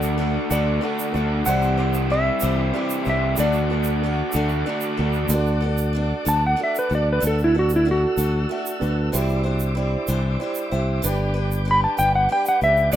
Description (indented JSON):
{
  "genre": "folk rock and heartland rock",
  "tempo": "63 BPM (dotted quarters)",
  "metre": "6/8",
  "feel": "straight",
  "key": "D mixolydian",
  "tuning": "A4 = 443 Hz",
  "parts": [
    { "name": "clean lap steel guitar", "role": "melody", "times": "0.0-13.0 s", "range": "E4 to B5", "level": "-22 LUFS", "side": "equal", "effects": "none" },
    { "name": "dark grand piano", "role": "accompaniment", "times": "0.0-12.9 s", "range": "D4 to E5", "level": "-30 LUFS", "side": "right 4 dB", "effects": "none" },
    { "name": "picked steel-string acoustic guitar", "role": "accompaniment", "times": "0.0-13.0 s", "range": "C3 to C5", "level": "-32 LUFS", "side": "left 7 dB", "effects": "none" },
    { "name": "tonewheel organ", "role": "sustained chords", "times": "0.0-13.0 s", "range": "A4 to E6", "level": "-33 LUFS", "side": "equal", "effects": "slow rotary speaker" },
    { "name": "raw garage guitar", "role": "riff", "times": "0.0-5.3, 12.9-13.0 s", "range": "C3 to G4", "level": "-25 LUFS", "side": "equal", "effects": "overdrive" },
    { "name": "fingered electric bass", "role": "bass", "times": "0.0-13.0 s", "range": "G1 to D2", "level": "-22 LUFS", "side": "equal", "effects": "none" },
    { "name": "egg shaker", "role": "percussion", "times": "0.0-13.0 s", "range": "none", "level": "-31 LUFS", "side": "right 7 dB", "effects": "none" }
  ],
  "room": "light reverb, small room ambience",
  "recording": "rough home demo mix",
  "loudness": "-19 LUFS",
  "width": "side -11 dB against mid",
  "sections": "0.0-5.3 A section; 5.3-13.0 B section",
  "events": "electric slide guitar solo 5.3-13.0",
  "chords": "0.0 D; 1.5 Cadd9; 3.4 D; 9.1 Cadd9; 11.0 G"
}